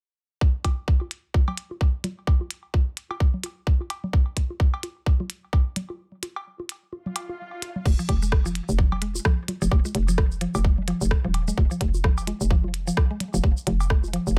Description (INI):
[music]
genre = minimal techno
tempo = 129 BPM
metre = 4/4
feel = swing 58% on 16ths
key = F minor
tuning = A4 = 441 Hz
[part]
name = electronic kick drum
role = drums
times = 0.4-14.4 s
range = none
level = -22 LUFS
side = equal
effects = small room ambience
[part]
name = minimal click drum kit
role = drums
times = 0.6-14.3 s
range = crash cymbal, hi-hat, rim click, shaker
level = -33 LUFS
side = equal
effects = low-pass filter on hats, small room ambience, low-pass filter on cymbals, low-pass filter on perc, low-pass filter on snare
[part]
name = cowbell, bongos and congas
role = percussion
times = 0.6-14.4 s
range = none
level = -36 LUFS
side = equal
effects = small room ambience, delay
[part]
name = swell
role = sound effects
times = 7.1-7.9 s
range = none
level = -41 LUFS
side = equal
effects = none
[part]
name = hollow knocking FM bass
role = bass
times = 7.9-14.4 s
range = Eb1 to F1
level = -27 LUFS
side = equal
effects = sidechain pumping
[part]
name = mallet-like synth pluck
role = riff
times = 8.0-14.2 s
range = F3 to Ab3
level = -33 LUFS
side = equal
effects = chorus, sidechain pumping, tape echo
[sound]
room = little or no reverb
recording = none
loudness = -24 LUFS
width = mono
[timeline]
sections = 0.4-7.9 A section; 7.9-14.4 B section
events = break 6.0-7.9; swell 7.1-7.9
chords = none